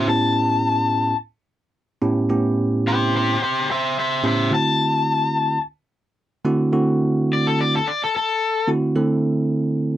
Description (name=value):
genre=blues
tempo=108 BPM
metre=4/4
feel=swing 54% on 16ths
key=unclear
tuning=A4 = 442 Hz
part: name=crunchy overdriven guitar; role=melody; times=0.0-8.7 s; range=G4 to A5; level=-20 LUFS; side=left 3 dB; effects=none
part: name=bell-like tine electric piano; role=accompaniment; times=0.0-10.0 s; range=A2 to A4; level=-19 LUFS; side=right 2 dB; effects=none
room=light reverb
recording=dry, close 1970s-style studio recording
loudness=-18 LUFS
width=side -12 dB against mid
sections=0.0-10.0 A section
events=overdriven electric guitar solo 0.0-10.0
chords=0.0 A7; 4.5 D7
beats=| 0.07 0.63 1.18 1.74 | 2.30 2.85 3.41 3.96 | 4.52 5.07 5.63 6.18 | 6.74 7.30 7.85 8.41 | 8.96 9.52